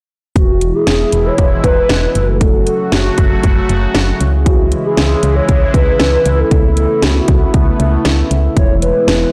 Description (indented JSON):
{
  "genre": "synth-pop",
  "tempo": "117 BPM",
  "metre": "4/4",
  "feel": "straight",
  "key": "unclear",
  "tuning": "A4 = 440 Hz",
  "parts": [
    { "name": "hollow clarinet-like synth lead", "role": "melody", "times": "0.4-9.3 s", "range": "F#4 to C#5", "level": "-18 LUFS", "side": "equal", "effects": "chorus" },
    { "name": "sweeping resonant pad", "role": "sustained chords", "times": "0.4-9.3 s", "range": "B2 to F#4", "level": "-21 LUFS", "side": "equal", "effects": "chorus" },
    { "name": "solid FM bass", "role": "bass", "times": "0.4-9.3 s", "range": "E1 to C#2", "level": "-17 LUFS", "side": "equal", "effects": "none" },
    { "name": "house drum kit", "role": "drums", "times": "0.4-9.2 s", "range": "hi-hat, kick drum, snare drum", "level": "-16 LUFS", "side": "equal", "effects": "none" }
  ],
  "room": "moderate digital room reverb, RT60 1.0 s",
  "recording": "blown-out, overdriven recording, overdrive",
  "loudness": "-13 LUFS",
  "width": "mono",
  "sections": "0.4-9.3 A section",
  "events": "none",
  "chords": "0.4 E; 2.2 F#m; 4.2 C#m; 6.5 Aadd9/C#; 8.6 E",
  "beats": "| 0.36 0.87 1.39 1.90 | 2.41 2.92 3.44 3.95 | 4.46 4.97 5.49 6.00 | 6.51 7.03 7.54 8.05 | 8.56 9.08"
}